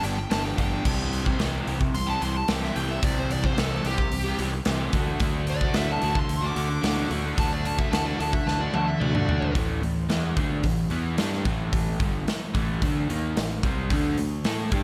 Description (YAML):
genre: classic rock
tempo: 110 BPM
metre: 4/4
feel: straight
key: unclear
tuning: A4 = 441 Hz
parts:
  - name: dark smooth lead guitar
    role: melody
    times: 0.0-9.5 s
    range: G4 to D6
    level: -33 LUFS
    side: equal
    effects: overdrive, analog delay
  - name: crunchy overdriven guitar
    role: riff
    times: 0.0-14.8 s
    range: G2 to A4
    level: -31 LUFS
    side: equal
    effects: slapback echo
  - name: fuzz picked electric bass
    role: bass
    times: 0.0-14.8 s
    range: G1 to A2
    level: -32 LUFS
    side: equal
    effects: overdrive
  - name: big rock drum kit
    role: drums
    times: 0.0-14.8 s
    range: crash cymbal, hi-hat, kick drum, snare drum, toms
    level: -29 LUFS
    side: equal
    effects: none
room: light reverb, small room ambience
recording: none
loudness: -25 LUFS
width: mono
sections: 0.0-9.5 A section; 9.5-14.8 B section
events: lead electric guitar solo 0.0-9.5; drum fill 8.5-9.5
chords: 0.0 G; 0.9 C; 4.9 D; 9.5 A5; 13.9 D5